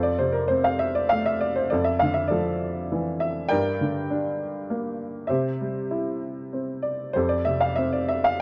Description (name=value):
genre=classical, lyrical solo piano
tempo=99 BPM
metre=3/4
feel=rubato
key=F major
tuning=A4 = 441 Hz
part: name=clear upright piano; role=solo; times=0.0-8.4 s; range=F2 to G5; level=-25 LUFS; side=equal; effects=none
room=light reverb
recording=worn, warbling old tape, cassette tape, warbly pitch drift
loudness=-25 LUFS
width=mono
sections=0.0-8.4 A section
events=none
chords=0.0 F; 1.7 Dmadd9/F; 3.5 Gm; 5.3 C; 7.1 Fadd9